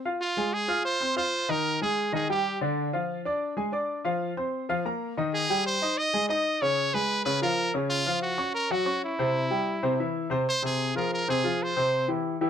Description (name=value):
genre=latin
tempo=187 BPM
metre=4/4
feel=straight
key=F minor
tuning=A4 = 440 Hz
part: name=clear grand piano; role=accompaniment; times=0.1-12.5 s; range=C3 to F6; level=-27 LUFS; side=left 1 dB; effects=none
part: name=brilliant trumpet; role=melody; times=0.2-2.6, 5.3-12.1 s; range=E4 to Eb5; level=-27 LUFS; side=right 1 dB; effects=none
room=light reverb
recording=close, detailed microphones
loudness=-25 LUFS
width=side -8 dB against mid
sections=0.2-10.5 A section; 10.5-12.5 B section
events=none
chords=0.2 Fm; 1.5 Ab5; 2.8 Ddim; 4.1 C7sus4; 5.3 Abmaj7; 6.6 Db7; 7.9 Gb5; 9.2 C; 10.5 Fm; 11.8 C